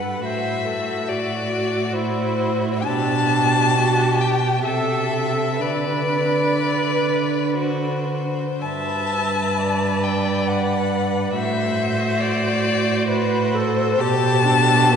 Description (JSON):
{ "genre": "classical, slow romantic movement for string quartet", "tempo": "53-72 BPM", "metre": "3/4", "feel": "rubato", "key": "G major", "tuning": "A4 = 439 Hz", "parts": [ { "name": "warm violin", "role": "melody", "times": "0.0-15.0 s", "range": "C5 to A5", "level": "-22 LUFS", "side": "left 4 dB", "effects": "none" }, { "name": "warm violin", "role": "second line", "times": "0.0-15.0 s", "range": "F#4 to B4", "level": "-27 LUFS", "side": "equal", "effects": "none" }, { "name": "clear viola", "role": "accompaniment", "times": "0.0-15.0 s", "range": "D4 to E5", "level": "-25 LUFS", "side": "right 2 dB", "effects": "none" }, { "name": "rich cello", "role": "bass", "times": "0.0-15.0 s", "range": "G2 to D3", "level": "-23 LUFS", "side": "right 3 dB", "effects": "none" } ], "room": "wet cathedral reverb, RT60 4.5 s", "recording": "heard from further back in the room, nothing above 10.9 kHz", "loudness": "-18 LUFS", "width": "side -7 dB against mid", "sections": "0.0-15.0 A section", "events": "none", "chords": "0.2 D7/A; 2.8 G/B; 4.6 Am/C; 5.6 Bm/D; 8.6 G; 11.4 D7/A; 14.0 G/B" }